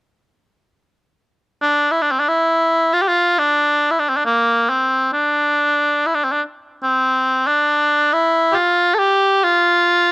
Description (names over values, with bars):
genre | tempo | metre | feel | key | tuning
caucasian folk, Caucasian lament | 69 BPM | 3/4 | rubato | D minor | A4 = 441 Hz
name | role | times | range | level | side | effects
clear cor anglais | solo | 1.6-10.1 s | Bb3 to A4 | -14 LUFS | equal | cassette tape
room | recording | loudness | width
light reverb | home recording on cassette | -14 LUFS | side -23 dB against mid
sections
1.6-10.1 A section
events
none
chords
none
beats
| 1.62 2.51 3.38 | 4.26 5.13 5.99 | 6.85 7.72 8.60 | 9.48